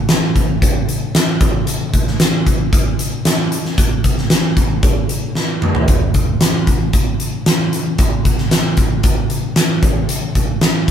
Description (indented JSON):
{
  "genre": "rock",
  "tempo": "114 BPM",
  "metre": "4/4",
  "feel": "straight",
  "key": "none",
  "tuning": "none",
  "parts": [
    { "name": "huge arena drum kit", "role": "drums", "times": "0.1-10.9 s", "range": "hi-hat, kick drum, snare drum, toms", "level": "-13 LUFS", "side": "equal", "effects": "none" }
  ],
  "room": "light reverb",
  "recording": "band playing live in one room",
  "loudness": "-13 LUFS",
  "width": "side -9 dB against mid",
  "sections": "0.0-10.9 A section",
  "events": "drum fill 5.4-5.9",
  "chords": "none"
}